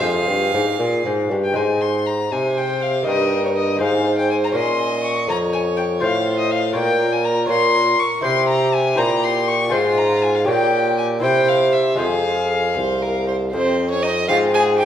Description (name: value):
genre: classical, baroque-style sonata movement with continuo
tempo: 80 BPM (dotted quarters)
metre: 6/8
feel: straight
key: Ab major, F minor from 7.5 s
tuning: A4 = 442 Hz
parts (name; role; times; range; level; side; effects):
- warm violin; melody; 0.0-14.8 s; C4 to Db6; -22 LUFS; left 5 dB; none
- warm violin; second line; 0.0-14.8 s; F4 to Ab5; -23 LUFS; right 3 dB; none
- lute; accompaniment; 0.0-14.8 s; F2 to Db5; -25 LUFS; left 2 dB; none
- dark bassoon; bass; 0.0-14.8 s; C2 to C3; -20 LUFS; equal; none
room: wet recital hall reverb, RT60 1.6 s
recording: recorded in a church or concert hall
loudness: -16 LUFS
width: side -10 dB against mid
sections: 0.0-1.6 A section; 1.6-13.5 A section; 13.5-14.8 B section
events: none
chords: 0.0 Fm; 1.6 Ab; 3.1 Eb/G; 3.8 Ab; 4.6 Bbm; 6.0 F/A; 6.8 Bbm; 8.2 C; 9.0 C7/Bb; 9.7 Fm/Ab; 10.5 Gdim/Bb; 11.2 C7; 12.0 Fm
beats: | 0.03 0.80 | 1.56 2.32 | 3.07 3.81 | 4.56 5.29 | 6.02 6.76 | 7.50 8.24 | 8.98 9.73 | 10.48 11.23 | 12.00 12.77 | 13.54 14.29